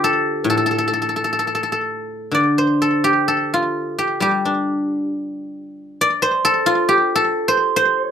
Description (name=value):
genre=chinese traditional, Chinese solo plucked strings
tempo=63-70 BPM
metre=2/4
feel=rubato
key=D yu mode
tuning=A4 = 440 Hz
part: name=guzheng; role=solo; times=0.0-8.1 s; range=A2 to D5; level=-16 LUFS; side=equal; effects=slapback echo
room=light reverb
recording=rough home demo mix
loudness=-16 LUFS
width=side -8 dB against mid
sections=0.0-8.1 A section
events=none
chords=none